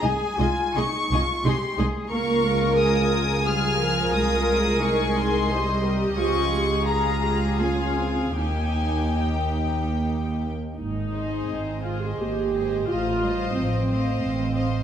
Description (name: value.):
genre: classical, slow romantic movement for string orchestra.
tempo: 72-91 BPM.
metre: 3/4.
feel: rubato.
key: Ab major.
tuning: A4 = 441 Hz.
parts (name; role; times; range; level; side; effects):
warm studio violin section; melody; 0.0-14.8 s; Eb5 to F6; -29 LUFS; left 4 dB; none.
clear studio violin section; second line; 0.0-14.8 s; G4 to Ab5; -31 LUFS; left 3 dB; none.
dark studio viola section; accompaniment; 0.0-14.5 s; F3 to Ab4; -26 LUFS; right 1 dB; none.
dark studio cello section; bass; 0.0-14.8 s; F3 to Bb4; -29 LUFS; equal; none.
rich studio double bass section; bass; 0.0-14.8 s; Ab1 to Eb2; -27 LUFS; right 2 dB; none.
room: wet recital hall reverb, RT60 1.5 s.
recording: none.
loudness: -21 LUFS.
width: side -9 dB against mid.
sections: 0.0-10.8 A section; 10.8-14.8 B section.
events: none.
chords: 0.0 Ab/C; 2.1 Db; 4.1 Ab/C; 6.2 Dbmaj7; 8.4 Eb; 10.8 Ab; 12.9 F7/A.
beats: | 0.03 0.77 1.45 | 2.11 2.78 3.46 | 4.14 4.82 5.51 | 6.19 6.88 7.61 | 8.39 9.21 10.01 | 10.78 11.50 12.20 | 12.90 13.56 14.23.